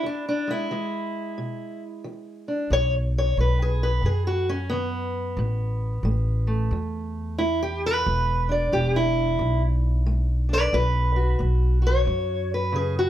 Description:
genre	acoustic country blues, solo or duo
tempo	90 BPM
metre	4/4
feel	swing 63% on 8ths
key	E mixolydian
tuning	A4 = 439 Hz
part	fingerpicked steel-string acoustic guitar	melody	0.0-13.1 s	E2 to D5	-25 LUFS	equal	none
part	upright bass	bass	2.7-13.1 s	E1 to F#2	-23 LUFS	equal	none
room	light reverb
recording	none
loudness	-22 LUFS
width	side -12 dB against mid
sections	0.0-13.1 A section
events	steel-string acoustic guitar solo 0.0-13.1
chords	0.0 E7; 2.7 B; 5.4 A5; 8.1 E7; 10.7 B5

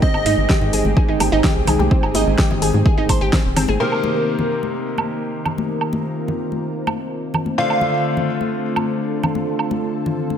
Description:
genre	progressive house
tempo	127 BPM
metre	4/4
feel	straight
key	C minor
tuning	A4 = 441 Hz
part	plucky unison lead	melody	0.0-0.9, 3.8-4.7, 7.6-8.4 s	Bb4 to F5	-23 LUFS	right 1 dB	sidechain pumping, ping-pong delay
part	lush unison pad	sustained chords	0.0-10.4 s	D3 to Bb4	-24 LUFS	right 1 dB	chorus, sidechain pumping
part	analog pluck	arpeggios	0.0-3.7 s	C4 to C5	-22 LUFS	right 1 dB	chorus, sidechain pumping, ping-pong delay
part	electronic kick drum	drums	0.0-3.4 s	none	-18 LUFS	equal	overdrive
part	tight sequencer bass	bass	0.1-3.8 s	Eb1 to Ab2	-21 LUFS	equal	sidechain pumping
part	deep house drum kit	drums	0.1-9.7 s	crash cymbal, hi-hat, snare drum, woodblock	-24 LUFS	right 2 dB	overdrive, sidechain pumping on hats, low-pass filter on hats, sidechain pumping on perc, low-pass filter on perc, low-pass filter on snare, sidechain pumping on cymbals, low-pass filter on cymbals
part	congas	percussion	0.3-10.4 s	none	-27 LUFS	left 3 dB	sidechain pumping on perc
part	bright grand piano	stabs	3.8-10.4 s	C3 to C5	-26 LUFS	left 4 dB	sidechain pumping, ping-pong delay
room	light reverb, digital ambience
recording	none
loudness	-16 LUFS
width	side -8 dB against mid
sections	0.0-3.8 A section; 3.8-10.4 B section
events	filter sweep on analog synth pad 3.8-10.4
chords	0.0 Abmaj7; 3.8 Cm7; 7.6 Dm7

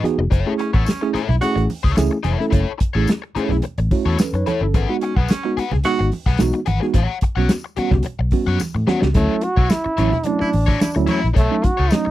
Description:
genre	funk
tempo	109 BPM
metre	4/4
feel	straight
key	F# dorian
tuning	A4 = 438 Hz
part	crunchy overdriven guitar	accompaniment	0.0-12.1 s	D#4 to F#5	-26 LUFS	left 9 dB	wah
part	mellow tine electric piano	stabs	0.0-12.1 s	F#3 to C#5	-21 LUFS	right 3 dB	medium stereo tremolo
part	congas	percussion	0.0-12.1 s	none	-28 LUFS	right 3 dB	none
part	warm soul drum kit	drums	0.1-12.1 s	hi-hat, kick drum, snare drum	-19 LUFS	equal	none
part	vintage muted fingered electric bass	bass	0.2-12.1 s	E#1 to A2	-20 LUFS	equal	none
part	clear baritone saxophone	second line	0.6-1.6, 5.0-6.1, 10.4-11.3 s	B3 to F#4	-25 LUFS	right 3 dB	none
part	tambourine	percussion	0.9-12.0 s	none	-36 LUFS	left 6 dB	none
part	warm trombone	melody	9.1-12.1 s	A3 to F#4	-22 LUFS	right 2 dB	none
room	little or no reverb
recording	dry, close 1970s-style studio recording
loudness	-16 LUFS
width	side -14 dB against mid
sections	0.0-9.2 A section; 9.2-12.1 B section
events	tine electric piano fill 3.6-4.7; drum fill 8.6-9.2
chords	0.3 F#m7; 4.7 G#m7; 7.0 A13 (rootless); 9.2 Dmaj9; 11.4 B9

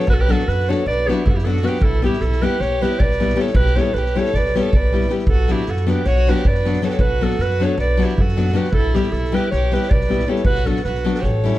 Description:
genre	balkan folk, Balkan wedding band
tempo	312 BPM (eighths)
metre	9/8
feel	straight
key	B minor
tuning	A4 = 438 Hz
part	mellow clarinet	melody	0.0-11.6 s	G4 to D5	-23 LUFS	right 1 dB	none
part	warm violin	second line	0.0-11.6 s	E4 to B4	-26 LUFS	right 3 dB	none
part	nylon-string guitar	accompaniment	0.0-11.6 s	F#3 to G4	-22 LUFS	left 4 dB	none
part	soft-mallet drum kit	percussion	0.0-11.6 s	kick drum, snare drum	-22 LUFS	equal	none
part	upright bass	bass	0.1-11.5 s	A1 to F#2	-21 LUFS	equal	none
room	light reverb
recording	dark, warm production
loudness	-16 LUFS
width	side -15 dB against mid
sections	0.0-11.6 A section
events	none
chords	0.0 Bm; 1.8 Em/B; 5.3 Bm; 8.7 Em/B; 10.4 Bm

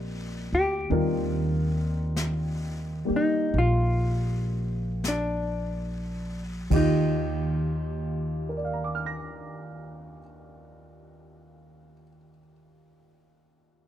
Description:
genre	jazz ballad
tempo	34-51 BPM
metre	4/4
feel	swing 69% on 8ths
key	Eb major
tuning	A4 = 441 Hz
part	dark baby grand piano	accompaniment	0.0-13.9 s	Eb2 to Bb6	-30 LUFS	equal	none
part	upright bass	bass	0.0-10.2 s	Bb1 to Eb2	-28 LUFS	equal	none
part	hollow-body jazz guitar	melody	0.5-10.2 s	D4 to G4	-28 LUFS	left 1 dB	plate reverb
part	jazz brush drum kit	drums	0.9-7.6 s	brushed snare drum, hi-hat, kick drum, ride cymbal, snare drum	-37 LUFS	left 1 dB	none
room	light reverb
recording	none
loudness	-25 LUFS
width	side -11 dB against mid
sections	0.0-6.7 A section; 6.7-13.8 B section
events	slowing down 0.0-6.7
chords	0.0 Ebmaj9

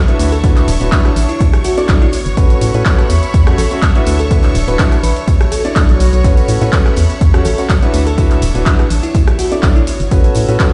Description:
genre	piano house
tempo	124 BPM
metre	4/4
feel	swing 53% on 16ths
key	A major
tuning	A4 = 440 Hz
part	string machine, violins	sustained chords	0.0-10.7 s	C#5 to C#6	-29 LUFS	equal	ensemble chorus, sidechain pumping
part	rich chamber string section	texture	0.0-10.7 s	B3 to B5	-28 LUFS	equal	sidechain pumping
part	warm concert grand piano	riff	0.1-10.7 s	C#4 to D5	-21 LUFS	equal	sidechain pumping, tape echo
part	breakbeat sampler-style drum kit	drums	0.1-10.7 s	hi-hat, snare drum	-36 LUFS	equal	none
part	punchy analog drum machine	drums	0.1-10.7 s	handclaps, hi-hat, rim click, shaker	-25 LUFS	equal	none
part	organ-like FM bass	bass	0.2-10.6 s	D1 to A2	-17 LUFS	equal	tube saturation, sidechain pumping
part	tambourine	percussion	0.2-10.7 s	none	-36 LUFS	equal	none
part	bell-like FM electric piano	melody	0.3-10.0 s	E4 to B4	-24 LUFS	equal	chorus, tape echo
part	electronic kick drum	drums	0.4-10.7 s	none	-15 LUFS	equal	none
room	little or no reverb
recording	played on a big sound system in a bare room, large studio reverb, nothing above 10.9 kHz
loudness	-12 LUFS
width	mono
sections	0.0-10.7 A section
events	none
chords	0.2 D69; 1.4 Bm11; 2.4 A69; 4.1 D69; 5.3 Bm11; 6.2 A69; 7.9 D69; 9.1 Bm11; 10.1 A69

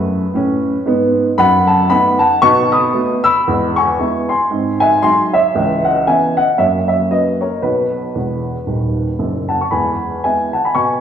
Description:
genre	jazz, stride piano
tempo	115 BPM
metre	4/4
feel	swing 58% on 8ths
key	E major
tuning	A4 = 440 Hz
part	dark upright piano	solo	0.0-11.0 s	D#1 to E6	-13 LUFS	equal	none
room	wet recital hall reverb, RT60 1.7 s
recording	recorded in a church or concert hall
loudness	-13 LUFS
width	side -8 dB against mid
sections	0.0-9.7 A section; 9.7-11.0 B section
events	upright piano fill 8.2-9.7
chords	0.0 E (rootless); 1.4 B7/F#; 2.4 B7; 3.5 E; 4.5 G#7; 5.5 C#m7; 6.6 F#; 7.6 B; 9.7 E

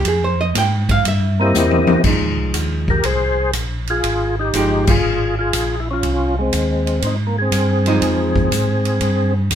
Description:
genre	soul jazz organ trio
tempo	120 BPM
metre	4/4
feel	swing 69% on 8ths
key	F minor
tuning	A4 = 440 Hz
part	archtop guitar, miked and amplified	accompaniment	0.0-4.9, 7.9-8.5 s	F3 to G5	-21 LUFS	right 3 dB	none
part	mellow tonewheel organ	bass	0.0-9.6 s	G1 to Ab2	-20 LUFS	equal	slow rotary speaker
part	swinging big-band drum kit	drums	0.0-9.6 s	crash cymbal, hi-hat, kick drum, ride cymbal, snare drum, toms	-22 LUFS	equal	none
part	percussive tonewheel organ	melody	1.4-9.3 s	Ab3 to D#5	-19 LUFS	left 1 dB	slow rotary speaker, overdrive, chorus vibrato
room	moderate studio reverb, RT60 0.7 s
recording	minimal, uncompressed stereo recording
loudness	-15 LUFS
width	side -9 dB against mid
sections	0.0-2.0 A section; 2.0-9.6 B section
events	hollow-body jazz guitar solo 0.0-2.0; drum fill 1.5-2.0; band accent 4.8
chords	0.1 Fm; 1.1 C7#9; 2.0 Fm9

